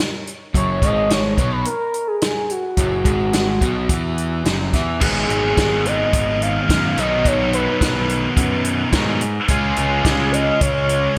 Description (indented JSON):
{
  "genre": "indie rock",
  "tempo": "107 BPM",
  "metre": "4/4",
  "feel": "straight",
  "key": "unclear",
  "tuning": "A4 = 440 Hz",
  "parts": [
    { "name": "vintage drum kit", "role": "drums", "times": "0.3-11.0 s", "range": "crash cymbal, hi-hat, kick drum, snare drum", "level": "-23 LUFS", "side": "equal", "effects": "gated reverb" },
    { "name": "crunchy overdriven guitar", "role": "riff", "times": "0.5-11.2 s", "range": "F#2 to F#4", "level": "-26 LUFS", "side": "equal", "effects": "lush chorus" },
    { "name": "fuzz picked electric bass", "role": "bass", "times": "0.5-11.1 s", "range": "F#1 to G#2", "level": "-26 LUFS", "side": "equal", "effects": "overdrive" },
    { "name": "expressive portamento lead", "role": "melody", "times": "0.6-11.2 s", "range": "F#4 to E#5", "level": "-24 LUFS", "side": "equal", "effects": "chorus, digital delay" },
    { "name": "scooped high-gain guitar", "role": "riff", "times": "5.0-11.2 s", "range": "G#2 to E#4", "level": "-24 LUFS", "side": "equal", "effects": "distortion, ensemble chorus" }
  ],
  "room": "moderate lush hall reverb, RT60 1.8 s, studio reverb",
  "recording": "bright 1980s-style digital production",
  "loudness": "-19 LUFS",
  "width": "mono",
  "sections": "0.0-5.0 A section; 5.0-11.2 B section",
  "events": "none",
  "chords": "0.0 N.C.; 5.0 G#m; 7.0 B; 9.5 C#"
}